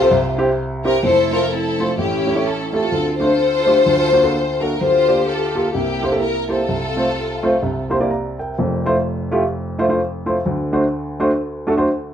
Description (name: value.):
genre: uptempo gospel.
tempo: 128 BPM.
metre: 4/4.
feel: swing 59% on 8ths.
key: F major.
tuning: A4 = 441 Hz.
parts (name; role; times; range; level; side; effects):
warm studio string section; melody; 0.0-7.9 s; Bb3 to C5; -17 LUFS; left 3 dB; none.
dark upright piano; accompaniment; 0.0-12.1 s; F1 to Bb5; -18 LUFS; right 1 dB; none.
room: moderate studio reverb, RT60 0.7 s.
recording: band playing live in one room.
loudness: -16 LUFS.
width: side -9 dB against mid.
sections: 0.0-1.0 A section; 1.0-12.1 B section.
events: none.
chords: 0.1 C; 1.0 Fmaj7; 2.0 A7; 2.9 Dm7; 3.9 D7b13; 4.8 Gm7/D; 5.7 C7; 6.7 F/C; 7.6 C7; 8.6 Fmaj7; 10.4 D7.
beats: 0.10 0.57 | 1.04 1.51 1.98 2.45 | 2.92 3.39 3.86 4.33 | 4.80 5.27 5.74 6.21 | 6.68 7.16 7.62 8.10 | 8.57 9.04 9.51 9.98 | 10.45 10.92 11.39 11.86.